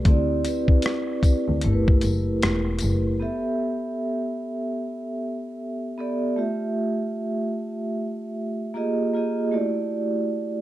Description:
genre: lo-fi hip hop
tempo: 76 BPM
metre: 4/4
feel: swing 59% on 16ths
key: G major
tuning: A4 = 441 Hz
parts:
  - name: vibraphone with soft mallets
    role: accompaniment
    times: 0.0-10.6 s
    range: A3 to E5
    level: -24 LUFS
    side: right 1 dB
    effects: cassette tape, low-pass filter
  - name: warm double bass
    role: bass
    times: 0.1-3.2 s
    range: E1 to D2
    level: -24 LUFS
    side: equal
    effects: none
  - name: boom bap sampler-style drum kit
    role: drums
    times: 0.1-3.0 s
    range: hi-hat, kick drum, rim click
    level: -20 LUFS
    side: equal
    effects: none
  - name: tambourine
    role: percussion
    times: 0.5-3.0 s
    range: none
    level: -40 LUFS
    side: left 7 dB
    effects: none
room: light reverb, studio reverb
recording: dark, warm production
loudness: -22 LUFS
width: side -14 dB against mid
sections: 0.0-3.2 A section; 3.2-10.6 B section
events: none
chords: 0.1 D9sus4; 1.6 G69; 6.4 Fmaj9; 8.7 Fm11; 9.5 Em11

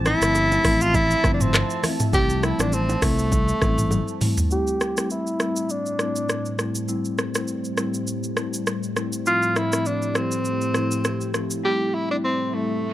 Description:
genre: afrobeats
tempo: 101 BPM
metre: 4/4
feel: swing 55% on 16ths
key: A minor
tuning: A4 = 437 Hz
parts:
  - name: deep dark ambient pad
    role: sustained chords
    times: 0.0-12.9 s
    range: A2 to A5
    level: -31 LUFS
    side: equal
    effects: chorus, built-in reverb, low-pass filter
  - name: fingered electric bass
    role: bass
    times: 0.0-4.0 s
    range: G1 to C2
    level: -24 LUFS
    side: equal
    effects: none
  - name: warm tenor saxophone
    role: melody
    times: 0.1-12.9 s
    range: A3 to G4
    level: -23 LUFS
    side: equal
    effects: low-pass filter, analog delay
  - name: afro-pop drum kit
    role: drums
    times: 0.1-11.6 s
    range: handclaps, hi-hat, kick drum, rim click, shaker, toms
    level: -24 LUFS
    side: equal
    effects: overdrive
  - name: bongos and congas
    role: percussion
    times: 0.1-4.4 s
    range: none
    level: -33 LUFS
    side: right 3 dB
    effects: none
  - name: marimba with medium mallets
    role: accompaniment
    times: 0.2-12.8 s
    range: A2 to E4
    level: -27 LUFS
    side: left 3 dB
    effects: low-pass filter
  - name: reverse cymbal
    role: sound effects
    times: 12.8-12.9 s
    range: none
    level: -40 LUFS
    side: right 5 dB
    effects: none
room: little or no reverb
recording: dry, gritty hardware recording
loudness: -20 LUFS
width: side -14 dB against mid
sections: 0.0-4.5 A section; 4.5-12.9 B section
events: drum fill 3.9-4.5; filter sweep 4.5-12.9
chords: 0.0 Fmaj7; 2.1 Am7; 9.3 Fmaj7/A; 11.6 C6

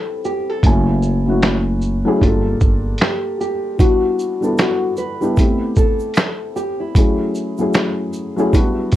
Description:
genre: lo-fi hip hop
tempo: 76 BPM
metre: 4/4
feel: swing 59% on 16ths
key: unclear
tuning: A4 = 440 Hz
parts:
  - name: nylon-string guitar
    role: melody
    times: 0.0-9.0 s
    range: E4 to B4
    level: -22 LUFS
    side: left 1 dB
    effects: low-pass filter, plate reverb, tape echo
  - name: felt-muted upright piano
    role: accompaniment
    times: 0.0-9.0 s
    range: F#3 to G#5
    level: -20 LUFS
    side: left 1 dB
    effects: cassette tape, low-pass filter, plate reverb
  - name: boom bap sampler-style drum kit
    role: drums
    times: 0.2-9.0 s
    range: finger snaps, hi-hat, kick drum, shaker, snare drum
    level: -16 LUFS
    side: right 1 dB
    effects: none
  - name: upright bass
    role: bass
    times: 0.6-2.9 s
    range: F#1 to G1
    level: -19 LUFS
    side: equal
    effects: none
  - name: egg shaker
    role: percussion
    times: 3.8-9.0 s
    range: none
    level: -45 LUFS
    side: right 8 dB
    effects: none
room: moderate studio ambience, RT60 0.5 s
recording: worn, warbling old tape, cassette tape, warbly pitch drift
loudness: -15 LUFS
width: side -13 dB against mid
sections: 0.0-9.0 A section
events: none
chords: 0.0 Am9; 0.6 F#m9; 2.2 Gm9; 3.8 Em9; 5.4 Am9; 6.9 F#m9

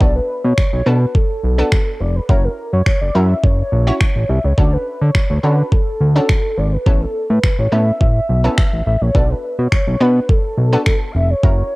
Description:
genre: dance-pop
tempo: 105 BPM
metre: 4/4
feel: straight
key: B minor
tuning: A4 = 441 Hz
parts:
  - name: warm velvety synth lead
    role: melody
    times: 0.0-11.8 s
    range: A4 to F#5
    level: -22 LUFS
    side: equal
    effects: chorus, cassette tape, tape echo
  - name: analog pluck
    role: accompaniment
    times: 0.0-11.8 s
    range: B3 to C#5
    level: -22 LUFS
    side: right 1 dB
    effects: chorus, sidechain pumping, cassette tape
  - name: fat analog bass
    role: bass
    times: 0.0-11.6 s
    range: E#1 to D3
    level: -15 LUFS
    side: equal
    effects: transformer saturation, sidechain pumping
  - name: smooth R&B drum kit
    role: drums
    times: 0.0-11.6 s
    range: finger snaps, kick drum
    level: -14 LUFS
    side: equal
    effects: none
room: digital ambience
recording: home recording on cassette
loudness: -13 LUFS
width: side -22 dB against mid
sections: 0.0-11.8 A section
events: none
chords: 0.0 Bm7; 2.3 F#7; 4.6 Dmaj7; 6.9 Aadd9; 9.2 Bm7

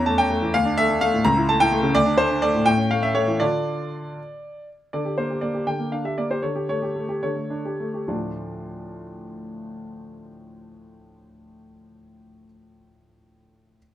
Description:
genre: classical-period piano sonatina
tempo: 68-85 BPM (dotted quarters)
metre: 6/8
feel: straight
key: D minor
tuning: A4 = 442 Hz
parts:
  - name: clear grand piano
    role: solo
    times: 0.0-13.8 s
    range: C#2 to Bb5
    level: -21 LUFS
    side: equal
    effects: none
room: light reverb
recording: none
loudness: -20 LUFS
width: side -12 dB against mid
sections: 0.0-4.9 A section; 4.9-8.1 B section; 8.1-11.6 C section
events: slowing down 4.2-8.1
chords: 0.0 A7/E; 0.5 D5; 1.2 A7/C#; 1.9 D5; 2.7 A; 3.4 Dm; 4.9 Gm/D; 6.4 A7/D; 8.1 Dm

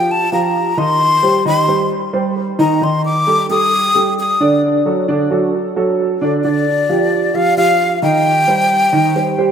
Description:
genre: latin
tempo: 132 BPM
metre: 4/4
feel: straight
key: G minor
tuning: A4 = 440 Hz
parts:
  - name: breathy jazz flute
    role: melody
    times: 0.0-9.5 s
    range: D5 to Eb6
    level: -15 LUFS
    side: left 2 dB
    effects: analog delay
  - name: dark grand piano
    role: arpeggios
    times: 0.0-9.5 s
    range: D3 to Eb5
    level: -15 LUFS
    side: right 2 dB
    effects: lush chorus, analog delay
room: wet plate reverb, RT60 2.9 s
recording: dreamy mix soaked in reverb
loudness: -12 LUFS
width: side -7 dB against mid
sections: 0.0-6.4 A section; 6.4-9.5 B section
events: flute solo 0.0-6.4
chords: 0.0 Gm7; 1.0 Cm; 2.8 Cm69 (rootless); 4.6 D; 6.4 G5; 8.2 Cm

